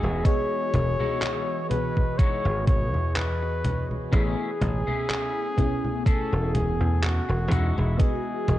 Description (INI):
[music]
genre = vaporwave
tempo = 62 BPM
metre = 4/4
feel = swing 54% on 16ths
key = E major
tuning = A4 = 440 Hz
[part]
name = breathy flugelhorn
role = melody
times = 0.0-8.6 s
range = E4 to C#5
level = -30 LUFS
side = left 1 dB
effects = vintage 12-bit sampler grit, tape echo
[part]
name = warbly tape-like pad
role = sustained chords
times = 0.0-8.6 s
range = E3 to G#5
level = -37 LUFS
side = right 1 dB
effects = chorus, built-in reverb, phaser
[part]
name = semi-hollow electric guitar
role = riff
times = 0.0-8.5 s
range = G#3 to G#4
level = -36 LUFS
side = left 2 dB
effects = wide subtle chorus, analog delay
[part]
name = dry thumbed slap bass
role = bass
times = 0.0-8.6 s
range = E1 to E2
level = -25 LUFS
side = equal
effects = none
[part]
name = detuned 8-bit digital drum machine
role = drums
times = 0.0-8.6 s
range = congas, handclaps, hi-hat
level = -30 LUFS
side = equal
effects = none
[part]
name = FM electric piano with soft pad layer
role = accompaniment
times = 0.2-8.6 s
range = B3 to D#5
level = -33 LUFS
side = left 1 dB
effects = phaser, wide subtle chorus, analog delay
[part]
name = electronic kick drum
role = drums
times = 0.2-8.2 s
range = none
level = -22 LUFS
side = equal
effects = none
[sound]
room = little or no reverb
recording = echo-heavy mix, cassette tape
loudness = -22 LUFS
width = side -14 dB against mid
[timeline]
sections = 0.0-8.6 A section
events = none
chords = 0.0 Emaj9; 4.1 Amaj7; 7.5 Emaj9